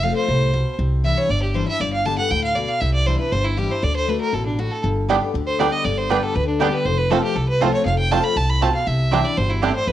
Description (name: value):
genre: bluegrass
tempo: 238 BPM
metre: 4/4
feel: straight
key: G mixolydian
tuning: A4 = 440 Hz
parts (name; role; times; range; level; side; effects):
- clear fiddle; melody; 0.0-9.9 s; D4 to B5; -22 LUFS; right 2 dB; cassette tape, plate reverb
- picked steel-string acoustic guitar; accompaniment; 0.0-9.9 s; F2 to G4; -25 LUFS; left 8 dB; plate reverb
- upright bass; bass; 0.0-9.9 s; F1 to D2; -22 LUFS; equal; none
- bluegrass banjo; arpeggios; 5.1-9.7 s; G3 to F4; -23 LUFS; right 6 dB; plate reverb
- mandolin; stabs; 5.1-9.7 s; B3 to A5; -25 LUFS; right 6 dB; plate reverb
room: moderate studio reverb, RT60 0.6 s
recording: home recording on cassette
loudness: -18 LUFS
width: side -12 dB against mid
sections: 0.0-9.9 A section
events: none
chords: 0.0 F; 0.8 Cadd9; 1.8 G; 2.8 Cadd9; 3.8 D; 4.8 G; 6.9 F; 8.9 Cadd9